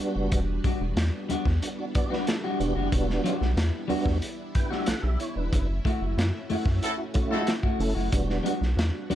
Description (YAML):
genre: funk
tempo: 92 BPM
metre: 4/4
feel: straight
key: E dorian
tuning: A4 = 439 Hz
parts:
  - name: string machine, full ensemble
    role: sustained chords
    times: 0.0-9.2 s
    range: G3 to F#4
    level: -36 LUFS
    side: equal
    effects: ensemble chorus
  - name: mellow tonewheel organ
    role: stabs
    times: 0.0-9.2 s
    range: G3 to G5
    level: -30 LUFS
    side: right 2 dB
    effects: chorus vibrato, fast rotary speaker
  - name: crunchy breakbeat drum kit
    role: drums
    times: 0.0-9.2 s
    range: hi-hat, kick drum, snare drum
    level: -28 LUFS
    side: equal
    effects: none
  - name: rubbery square bass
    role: bass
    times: 0.2-9.2 s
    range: E1 to F#2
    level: -27 LUFS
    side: equal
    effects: none
  - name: electric guitar at the edge of break-up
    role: accompaniment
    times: 0.6-9.2 s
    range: G3 to F#4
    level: -30 LUFS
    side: left 2 dB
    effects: tremolo
  - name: mellow horn section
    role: second line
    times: 6.8-7.5 s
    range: A3 to A4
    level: -30 LUFS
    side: equal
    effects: none
room: light reverb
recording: dark, warm production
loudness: -24 LUFS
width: side -12 dB against mid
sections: 0.0-9.2 A section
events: tonewheel organ fill 1.6-2.9; band accent 5.5-8.1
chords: 0.0 Em9; 5.5 F#m7; 8.1 Em9